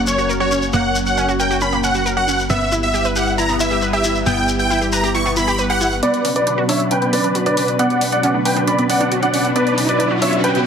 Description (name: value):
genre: uplifting trance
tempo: 136 BPM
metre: 4/4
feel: straight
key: B harmonic minor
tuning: A4 = 442 Hz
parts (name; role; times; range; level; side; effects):
- analog string pad; sustained chords; 0.0-10.7 s; B2 to B4; -22 LUFS; left 1 dB; ensemble chorus
- wide unison pluck; arpeggios; 0.0-10.6 s; A#3 to B4; -22 LUFS; right 2 dB; tape echo
- solid FM bass; bass; 0.0-6.0 s; F#1 to G1; -25 LUFS; left 1 dB; none
- supersaw chords; melody; 0.1-10.6 s; B4 to C#6; -19 LUFS; equal; low-pass filter, tape echo
- shekere; percussion; 0.1-6.0 s; none; -27 LUFS; left 4 dB; none
- clear concert grand piano; second line; 6.0-10.6 s; D5 to B5; -24 LUFS; equal; low-pass filter, tape echo
- electronic hi-hat; drums; 6.0-10.6 s; none; -25 LUFS; equal; low-pass filter on hats, low-pass filter on room
- riser; sound effects; 7.9-10.7 s; none; -25 LUFS; right 1 dB; none
room: moderate huge ambient reverb, RT60 4.8 s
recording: heavily compressed radio sound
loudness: -15 LUFS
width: side -7 dB against mid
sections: 0.0-6.0 A section; 6.0-10.7 B section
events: build-up 6.0-10.7; filter sweep on supersaw synth 6.0-10.7; filter sweep on grand piano 6.0-10.7; riser 7.9-10.7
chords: 0.0 F#; 2.5 Em/G; 6.0 Bmadd9